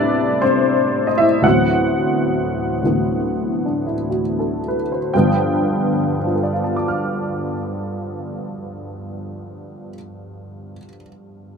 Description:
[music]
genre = solo jazz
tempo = 56-81 BPM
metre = 4/4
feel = swing 67% on 8ths, rubato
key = G mixolydian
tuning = A4 = 441 Hz
[part]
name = honky-tonk upright piano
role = solo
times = 0.0-11.6 s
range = D2 to F6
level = -18 LUFS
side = equal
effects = none
[sound]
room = light reverb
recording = close, detailed microphones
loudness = -17 LUFS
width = side -6 dB against mid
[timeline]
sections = 0.0-5.1 A section; 5.1-9.2 B section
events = slowing down 0.0-5.1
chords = 0.0 Am9; 1.4 D13; 5.1 G7

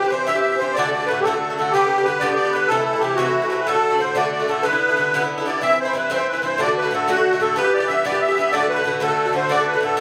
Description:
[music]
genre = celtic folk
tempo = 124 BPM (dotted quarters)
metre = 6/8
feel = straight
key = unclear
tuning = A4 = 440 Hz
[part]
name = musette accordion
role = melody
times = 0.0-10.0 s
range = F#4 to E5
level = -21 LUFS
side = equal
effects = none
[part]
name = Irish bouzouki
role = accompaniment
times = 0.0-10.0 s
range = G2 to G4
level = -24 LUFS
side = equal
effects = none
[sound]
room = moderate large studio reverb, RT60 1.1 s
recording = band playing live in one room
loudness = -19 LUFS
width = mono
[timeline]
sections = 0.0-5.6 A section; 5.6-10.0 B section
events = none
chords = 0.0 C; 0.8 D; 1.7 G; 2.7 Am; 3.7 D; 4.7 G6; 5.6 C; 6.6 D; 7.6 Em; 8.5 D

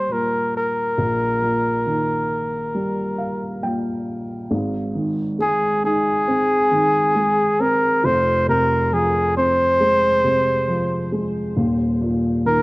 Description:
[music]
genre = pop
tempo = 68 BPM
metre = 4/4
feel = straight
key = Ab major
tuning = A4 = 440 Hz
[part]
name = clear flugelhorn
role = melody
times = 0.0-12.6 s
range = Ab4 to C5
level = -18 LUFS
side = equal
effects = cassette tape
[part]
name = dark upright piano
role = accompaniment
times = 0.0-12.6 s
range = Eb1 to G5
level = -22 LUFS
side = equal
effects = cassette tape
[sound]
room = light reverb, studio reverb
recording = home recording on cassette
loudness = -17 LUFS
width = side -22 dB against mid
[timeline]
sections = 0.0-4.5 A section; 4.5-12.6 B section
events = upright piano fill 2.7-4.5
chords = 0.0 Eb; 4.5 Ab; 8.0 Fm; 11.6 Eb5

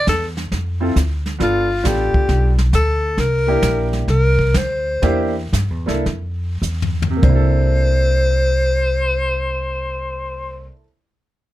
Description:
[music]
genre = jazz, small-group swing and bop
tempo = 95-135 BPM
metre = 4/4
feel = swing 67% on 8ths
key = C mixolydian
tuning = A4 = 440 Hz
[part]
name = breathy alto saxophone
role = melody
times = 0.0-10.7 s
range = F4 to C5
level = -19 LUFS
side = left 2 dB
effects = none
[part]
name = upright bass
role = bass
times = 0.0-10.7 s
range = G1 to G2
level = -19 LUFS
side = equal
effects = none
[part]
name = jazz brush drum kit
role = drums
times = 0.1-7.7 s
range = brushed snare drum, hi-hat, kick drum, snare drum, toms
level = -20 LUFS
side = equal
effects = none
[part]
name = clear concert grand piano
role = accompaniment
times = 0.8-10.8 s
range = C3 to A4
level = -23 LUFS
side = right 2 dB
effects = none
[sound]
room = light reverb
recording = close, detailed microphones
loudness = -15 LUFS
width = side -15 dB against mid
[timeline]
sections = 0.0-7.2 A section; 7.2-11.5 B section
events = slowing down 3.2-7.2; drum fill 6.6-7.2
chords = 0.0 Dm; 1.4 G7; 3.2 C7; 7.2 C13

